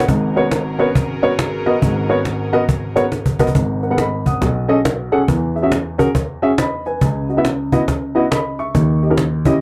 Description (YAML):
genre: uptempo gospel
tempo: 138 BPM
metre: 4/4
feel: swing 64% on 8ths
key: G# minor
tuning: A4 = 440 Hz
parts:
  - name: warm upright piano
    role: accompaniment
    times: 0.0-9.6 s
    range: G#1 to D#6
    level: -19 LUFS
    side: equal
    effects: none
  - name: cajon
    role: drums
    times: 0.0-9.5 s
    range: none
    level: -21 LUFS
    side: equal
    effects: none
  - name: warm studio string section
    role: sustained chords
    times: 0.1-3.5 s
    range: B3 to A#4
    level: -30 LUFS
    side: equal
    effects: none
room: moderate booth ambience, RT60 0.2 s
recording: dry, close 1970s-style studio recording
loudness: -17 LUFS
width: mono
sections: 0.1-3.6 A section; 3.6-9.6 B section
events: drum fill 2.7-3.6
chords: 0.1 G#m11; 3.6 G#m9; 4.4 B13; 5.3 E69; 7.0 C#m11; 8.7 D#7b9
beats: | 0.08 0.52 0.95 1.38 | 1.82 2.25 2.68 3.12 | 3.55 3.98 4.42 4.85 | 5.28 5.72 6.15 6.58 | 7.01 7.45 7.88 8.31 | 8.74 9.18 9.61